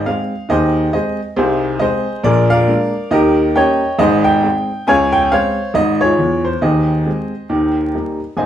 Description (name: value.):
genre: jazz, stride piano.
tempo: 137 BPM.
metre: 4/4.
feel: swing 60% on 8ths.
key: Ab major.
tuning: A4 = 440 Hz.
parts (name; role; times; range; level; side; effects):
warm upright piano; solo; 0.0-8.5 s; Ab1 to Ab5; -13 LUFS; equal; none.
room: wet studio reverb, RT60 0.5 s.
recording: heard from further back in the room, vinyl crackle.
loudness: -13 LUFS.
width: side -10 dB against mid.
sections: 0.0-8.4 A section.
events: none.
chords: 0.0 Ab; 1.4 Ab/C; 2.2 Bb7; 3.1 Eb7; 4.0 Ab; 4.9 Dbmaj7; 6.6 Ab/Eb; 7.5 Eb.